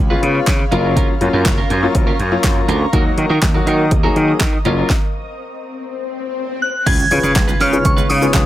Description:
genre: dance-pop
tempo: 122 BPM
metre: 4/4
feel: straight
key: F# major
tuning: A4 = 440 Hz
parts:
  - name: ethereal airy pad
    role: sustained chords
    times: 0.0-8.5 s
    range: C#3 to D#6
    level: -26 LUFS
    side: equal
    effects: ensemble chorus, built-in reverb, sidechain pumping
  - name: gritty slap bass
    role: bass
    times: 0.0-8.5 s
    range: F#1 to D#3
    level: -18 LUFS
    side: equal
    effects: overdrive, sidechain pumping
  - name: warm concert grand piano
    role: accompaniment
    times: 0.1-8.5 s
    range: F#3 to C#5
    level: -20 LUFS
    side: left 4 dB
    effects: sidechain pumping
  - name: clean electric guitar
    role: riff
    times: 0.1-8.4 s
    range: C#4 to B4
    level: -24 LUFS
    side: right 6 dB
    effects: lush chorus
  - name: deep house drum kit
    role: drums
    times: 0.2-8.5 s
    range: crash cymbal, handclaps, hi-hat, kick drum, shaker, snare drum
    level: -16 LUFS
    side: equal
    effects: none
  - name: swell and impact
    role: sound effects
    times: 5.4-8.5 s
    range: none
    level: -26 LUFS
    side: left 3 dB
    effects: none
  - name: soft synth bell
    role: melody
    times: 6.6-8.5 s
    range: C#6 to G#6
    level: -18 LUFS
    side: equal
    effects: chorus
room: little or no reverb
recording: none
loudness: -13 LUFS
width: side -14 dB against mid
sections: 0.0-6.9 A section; 6.9-8.5 B section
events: stop 4.9-6.9; swell 5.4-6.9; impact 6.9-8.5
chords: 0.0 C#7; 0.7 F#maj7; 2.9 D#m; 4.7 F#maj7; 6.9 C#7

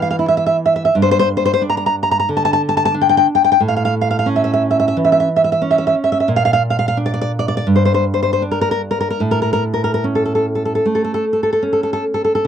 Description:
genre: romantic piece for solo classical guitar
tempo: 71-94 BPM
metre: 4/4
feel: rubato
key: unclear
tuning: A4 = 440 Hz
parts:
  - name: nylon-string guitar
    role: solo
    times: 0.0-12.5 s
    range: G2 to Bb5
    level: -14 LUFS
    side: equal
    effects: none
room: little or no reverb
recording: dry, close 1970s-style studio recording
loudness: -14 LUFS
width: side -8 dB against mid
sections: 0.0-12.4 A section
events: none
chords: 0.0 N.C.; 0.9 G5; 3.6 A; 6.3 Bb; 7.7 G5; 9.2 A

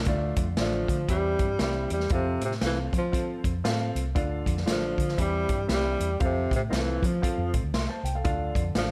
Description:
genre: uptempo 1960s-style soul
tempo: 117 BPM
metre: 4/4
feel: swing 60% on 8ths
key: unclear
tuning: A4 = 440 Hz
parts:
  - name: vintage muted fingered electric bass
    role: bass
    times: 0.0-8.9 s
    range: A1 to F3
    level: -32 LUFS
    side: equal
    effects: none
  - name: warm concert grand piano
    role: accompaniment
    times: 0.1-8.9 s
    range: D3 to C6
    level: -35 LUFS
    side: equal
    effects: none
  - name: swinging big-band drum kit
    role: drums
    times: 0.1-8.9 s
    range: hi-hat, kick drum, snare drum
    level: -31 LUFS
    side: equal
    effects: none
  - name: breathy tenor saxophone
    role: melody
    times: 0.6-8.9 s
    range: C3 to G3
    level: -31 LUFS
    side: equal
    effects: none
room: small room ambience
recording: none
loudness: -27 LUFS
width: mono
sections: 0.1-8.9 A section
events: none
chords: 0.1 Dm; 1.1 C/E; 2.1 F; 4.2 Dm; 5.2 C/E; 6.2 F; 8.2 Dm

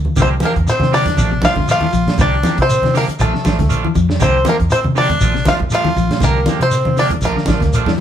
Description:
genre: afrobeat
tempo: 119 BPM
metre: 4/4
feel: swing 55% on 16ths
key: C mixolydian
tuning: A4 = 439 Hz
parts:
  - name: vintage muted fingered electric bass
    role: bass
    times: 0.0-7.9 s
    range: A1 to C3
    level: -19 LUFS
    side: equal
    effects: none
  - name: congas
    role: percussion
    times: 0.0-8.0 s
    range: none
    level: -22 LUFS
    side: equal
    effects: none
  - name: bluegrass banjo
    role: melody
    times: 0.2-8.0 s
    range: A4 to F5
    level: -18 LUFS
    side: left 1 dB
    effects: none
  - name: growling tenor saxophone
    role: second line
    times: 0.2-8.0 s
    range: A3 to F4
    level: -23 LUFS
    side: right 3 dB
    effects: none
  - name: clean electric guitar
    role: arpeggios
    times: 0.2-8.0 s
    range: C3 to F3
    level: -22 LUFS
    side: left 8 dB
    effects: spring reverb
  - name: electric guitar at the edge of break-up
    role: stabs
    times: 0.2-7.9 s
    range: F3 to G4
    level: -23 LUFS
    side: right 5 dB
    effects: none
  - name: warm soul drum kit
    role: drums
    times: 0.2-8.0 s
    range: hi-hat, kick drum, snare drum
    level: -20 LUFS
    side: right 1 dB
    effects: none
  - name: shekere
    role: percussion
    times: 0.2-7.9 s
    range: none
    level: -23 LUFS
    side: left 1 dB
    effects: none
room: moderate studio reverb, RT60 0.8 s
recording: band playing live in one room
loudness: -12 LUFS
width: side -10 dB against mid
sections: 0.2-8.0 A section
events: drum fill 7.6-8.0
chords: 0.2 C9sus4; 1.2 Bbmaj7; 2.2 C9sus4; 3.2 Bbmaj7; 4.2 C9sus4; 5.2 Bbmaj7; 6.2 C9sus4; 7.2 Bbmaj7

